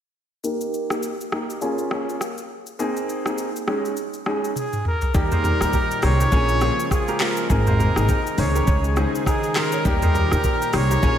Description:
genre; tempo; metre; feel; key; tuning
afrobeats; 102 BPM; 4/4; swing 58% on 16ths; Eb mixolydian; A4 = 441 Hz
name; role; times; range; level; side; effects
warm grand piano; accompaniment; 0.4-11.2 s; G3 to Bb4; -26 LUFS; left 1 dB; low-pass filter
afro-pop drum kit; drums; 0.4-11.2 s; handclaps, hi-hat, kick drum, rim click, shaker, toms; -24 LUFS; equal; none
breathy trumpet; melody; 4.6-11.2 s; Ab4 to Db5; -25 LUFS; equal; none
warm analog pad; sustained chords; 5.1-11.2 s; Bb2 to Ab4; -28 LUFS; left 1 dB; chorus
upright bass; bass; 5.1-11.2 s; Ab1 to Eb2; -21 LUFS; equal; none
kora; riff; 5.3-11.2 s; Eb4 to Db5; -29 LUFS; right 4 dB; tape echo
room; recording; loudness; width
wet lush hall reverb, RT60 1.7 s, small room ambience; dreamy mix soaked in reverb; -19 LUFS; side -10 dB against mid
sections
0.4-5.1 A section; 5.1-11.2 B section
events
filter sweep on grand piano 0.4-5.1; drum fill 4.6-5.1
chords
0.4 Eb; 1.6 Bbm7; 2.8 Abadd9; 3.7 Dbsus2; 5.1 Eb; 6.3 Bbm7; 7.5 Abadd9; 8.4 Dbsus2; 9.9 Eb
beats
| 0.44 1.03 1.62 2.21 | 2.79 3.38 3.97 4.56 | 5.15 5.73 6.32 6.91 | 7.50 8.09 8.68 9.26 | 9.85 10.44 11.03

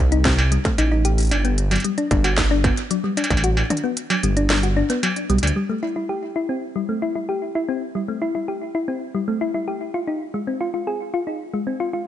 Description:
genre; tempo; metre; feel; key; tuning
IDM; 113 BPM; 4/4; straight; A dorian; A4 = 440 Hz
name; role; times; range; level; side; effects
dark detuned saw bass; bass; 0.0-5.5 s; G1 to D2; -20 LUFS; right 1 dB; none
thumb-piano-like synth pluck; arpeggios; 0.1-12.1 s; F#3 to Ab4; -22 LUFS; left 2 dB; chorus, digital delay
industrial drum kit; drums; 0.1-5.6 s; hi-hat, snare drum, struck metal, toms; -24 LUFS; right 1 dB; low-pass filter on snare, low-pass filter on hats, low-pass filter on perc, low-pass filter on toms, digital delay
electronic kick drum; drums; 0.3-3.4 s; none; -22 LUFS; right 1 dB; distortion
room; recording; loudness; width
light reverb; nothing above 10.5 kHz; -19 LUFS; side -11 dB against mid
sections
0.0-5.6 A section; 5.6-12.1 B section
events
kick drops out 3.4-5.6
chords
0.0 Cm6; 1.3 Gmaj7(no3); 5.6 A7(no3); 9.8 Fm7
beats
0.25 0.78 | 1.31 1.84 2.38 2.91 | 3.44 3.97 4.50 5.03 | 5.56 6.09 6.62 7.16 | 7.69 8.22 8.75 9.28 | 9.81 10.34 10.87 11.40 | 11.93

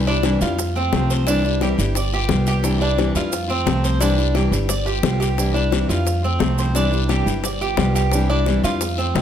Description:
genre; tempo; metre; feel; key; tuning
latin, Cuban son and guajira; 175 BPM; 4/4; straight; C major; A4 = 438 Hz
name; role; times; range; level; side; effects
nylon-string guitar; accompaniment; 0.0-9.2 s; C3 to F4; -23 LUFS; left 3 dB; none
upright bass; bass; 0.0-9.2 s; G1 to F2; -21 LUFS; right 1 dB; none
Cuban tres; arpeggios; 0.1-9.2 s; C4 to D5; -23 LUFS; right 2 dB; none
maracas; percussion; 0.1-9.2 s; none; -32 LUFS; right 8 dB; none
bongos; percussion; 0.2-9.2 s; none; -27 LUFS; left 6 dB; none
guiro; percussion; 0.2-9.2 s; none; -32 LUFS; left 8 dB; none
room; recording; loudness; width
moderate large studio reverb, RT60 1.5 s; none; -17 LUFS; side -9 dB against mid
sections
0.0-9.2 A section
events
none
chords
0.0 Cadd9; 0.6 F; 1.3 Cadd9; 2.0 G7; 2.6 Cadd9; 3.3 F; 4.0 Cadd9; 4.7 G7; 5.4 Cadd9; 6.1 F; 6.7 Cadd9; 7.4 G7; 8.1 Cadd9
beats
0.24 0.58 0.93 | 1.27 1.61 1.95 2.30 | 2.64 2.98 3.32 3.67 | 4.01 4.35 4.69 5.04 | 5.38 5.72 6.06 6.41 | 6.75 7.09 7.43 7.78 | 8.12 8.46 8.80 9.15

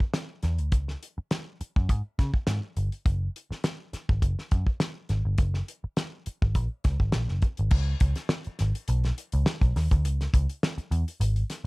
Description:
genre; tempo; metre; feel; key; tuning
funk; 103 BPM; 4/4; straight; C# dorian; A4 = 441 Hz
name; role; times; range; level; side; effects
damped 70s drum kit; drums; 0.0-11.6 s; crash cymbal, hi-hat, kick drum, snare drum; -26 LUFS; equal; none
vintage muted picked electric bass; bass; 0.4-11.4 s; F#1 to C#3; -26 LUFS; equal; none
room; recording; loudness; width
little or no reverb; dark, warm production; -25 LUFS; side -26 dB against mid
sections
0.0-7.7 A section; 7.7-11.7 B section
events
none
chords
none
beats
0.14 | 0.72 1.30 1.89 2.47 | 3.06 3.64 4.22 4.81 | 5.39 5.97 6.56 7.14 | 7.72 8.30 8.88 9.46 | 10.04 10.62 11.20

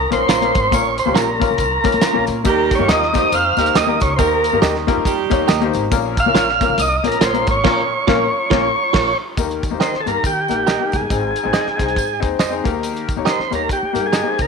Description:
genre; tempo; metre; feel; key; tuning
uptempo 1960s-style soul; 139 BPM; 4/4; swing 59% on 8ths; Eb mixolydian; A4 = 437 Hz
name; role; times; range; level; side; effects
tonewheel organ; melody; 0.0-14.5 s; G4 to F5; -18 LUFS; right 1 dB; slow rotary speaker
glockenspiel with soft plastic mallets; second line; 0.0-7.6 s; Bb5 to F6; -27 LUFS; right 10 dB; none
upright bass; bass; 0.0-14.5 s; G1 to Eb3; -26 LUFS; right 1 dB; none
clear upright piano; accompaniment; 0.1-14.5 s; Ab2 to Db5; -21 LUFS; left 11 dB; none
cloth-damped thuddy drum kit; drums; 0.1-14.5 s; crash cymbal, hi-hat, kick drum, snare drum; -21 LUFS; equal; none
tambourine; percussion; 0.1-14.5 s; none; -36 LUFS; left 12 dB; none
direct-recorded clean electric guitar; stabs; 0.3-14.3 s; Db4 to Eb5; -22 LUFS; right 11 dB; none
clear saxophone section; second line; 2.5-5.7 s; F3 to C5; -22 LUFS; right 11 dB; none
room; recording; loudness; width
moderate echo chamber reverb, RT60 1.5 s, studio reverb; 1960s-style stereo with parts hard left and right; -15 LUFS; side -5 dB against mid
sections
0.0-9.4 A section; 9.4-14.5 B section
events
band accent 7.6-9.4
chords
0.0 Bbm; 2.5 Eb; 5.9 Bbm; 9.4 Eb; 11.1 Ab; 12.6 Eb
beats
0.29 | 0.72 1.15 1.59 2.02 | 2.46 2.89 3.32 3.76 | 4.19 4.62 5.05 5.49 | 5.92 6.35 6.78 7.21 | 7.65 8.08 8.51 8.94 | 9.38 9.81 10.24 10.67 | 11.11 11.54 11.97 12.40 | 12.84 13.27 13.70 14.13

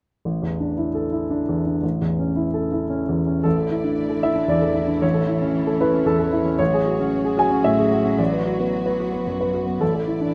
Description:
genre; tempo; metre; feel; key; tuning
neoclassical piano and strings; 114 BPM; 3/4; rubato; unclear; A4 = 440 Hz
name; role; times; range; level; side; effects
warm upright piano; accompaniment; 0.3-10.3 s; A1 to G#5; -22 LUFS; equal; none
rich cello; second line; 3.4-10.3 s; E3 to F#3; -33 LUFS; equal; none
rich studio string section; sustained chords; 3.4-10.3 s; F#3 to D5; -37 LUFS; equal; none
room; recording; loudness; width
small room reverb; rough home demo mix; -21 LUFS; mono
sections
0.3-3.4 A section; 3.4-10.3 B section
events
none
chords
0.3 Dsus2/A; 1.8 A; 3.4 Dsus2/A; 5.0 A; 6.6 F#madd9/A; 8.2 Bm/A; 9.8 Dsus2/A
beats
| 0.26 0.78 1.31 | 1.83 2.36 2.90 | 3.45 3.98 4.50 | 5.03 5.55 6.07 | 6.59 7.12 7.65 | 8.19 8.73 9.27 | 9.81

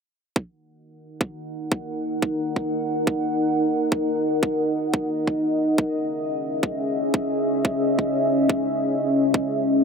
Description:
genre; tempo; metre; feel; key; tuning
dark technical drum and bass; 177 BPM; 4/4; straight; Eb phrygian; A4 = 440 Hz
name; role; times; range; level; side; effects
deep dark ambient pad; sustained chords; 1.4-9.8 s; Db4 to Gb5; -21 LUFS; equal; chorus, built-in reverb, sidechain pumping
electronic kick drum; drums; 0.4-9.4 s; none; -23 LUFS; right 1 dB; high-pass filter on kick
room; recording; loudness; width
moderate lush hall reverb, RT60 1.6 s; none; -21 LUFS; side -5 dB against mid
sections
0.4-9.8 A section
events
none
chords
0.4 Ebm; 5.8 Dbm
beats
| 0.36 0.70 1.04 1.38 | 1.72 2.06 2.39 2.73 | 3.07 3.41 3.75 4.09 | 4.43 4.77 5.11 5.44 | 5.78 6.12 6.46 6.80 | 7.14 7.48 7.82 8.16 | 8.49 8.83 9.17 9.51

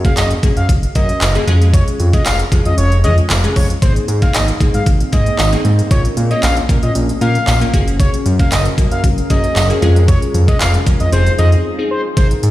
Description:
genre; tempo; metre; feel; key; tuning
dance-pop; 115 BPM; 4/4; straight; unclear; A4 = 441 Hz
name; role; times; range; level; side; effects
expressive synth lead; melody; 0.0-12.3 s; C5 to F5; -21 LUFS; equal; chorus, sidechain pumping, dub echo
glassy digital keys; accompaniment; 0.0-12.5 s; Ab3 to Db5; -22 LUFS; left 1 dB; chorus, sidechain pumping
fat analog bass; bass; 0.0-12.5 s; F1 to Bb2; -14 LUFS; equal; sidechain pumping
pop drum kit; drums; 0.0-12.5 s; handclaps, hi-hat, kick drum; -15 LUFS; equal; overdrive
tambourine; percussion; 0.2-10.7 s; none; -31 LUFS; right 6 dB; none
shimmering ambient pad; sustained chords; 4.5-12.2 s; F3 to Bb4; -26 LUFS; equal; chorus, built-in reverb, sidechain pumping
room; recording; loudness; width
light reverb; played on a big sound system in a bare room, stone room reverb; -11 LUFS; side -15 dB against mid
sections
0.0-12.2 A section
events
drop 0.0-12.2; break 11.6-12.2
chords
0.0 Gbadd9; 1.5 Db/F; 3.8 Abadd9; 5.9 Bbm; 7.7 Gbadd9; 9.8 Db/F; 11.1 Fm7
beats
0.17 0.69 1.21 | 1.74 2.26 2.78 3.30 | 3.82 4.34 4.87 5.39 | 5.91 6.43 6.95 7.47 | 8.00 8.52 9.04 9.56 | 10.08 10.61 11.13 11.65 | 12.17

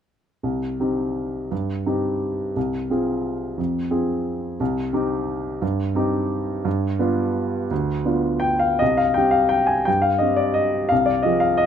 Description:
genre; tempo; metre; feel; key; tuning
classical, piano waltz; 152-184 BPM; 3/4; rubato; C minor; A4 = 438 Hz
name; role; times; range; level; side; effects
warm grand piano; solo; 0.4-11.7 s; C2 to Ab5; -19 LUFS; equal; none
room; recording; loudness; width
light reverb; none; -20 LUFS; side -8 dB against mid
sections
0.4-8.8 A section; 8.8-11.7 B section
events
none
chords
0.4 Cm; 2.6 Fm/C; 4.6 Cm; 6.7 G7; 8.8 Cm; 10.9 Fm/C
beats
| 0.44 0.80 1.16 | 1.51 1.86 2.21 | 2.56 2.90 3.25 | 3.58 3.92 4.26 | 4.60 4.93 5.28 | 5.62 5.96 6.30 | 6.66 7.00 7.36 | 7.70 8.05 8.43 | 8.81 9.16 9.52 | 9.87 10.21 10.57 | 10.91 11.25 11.60

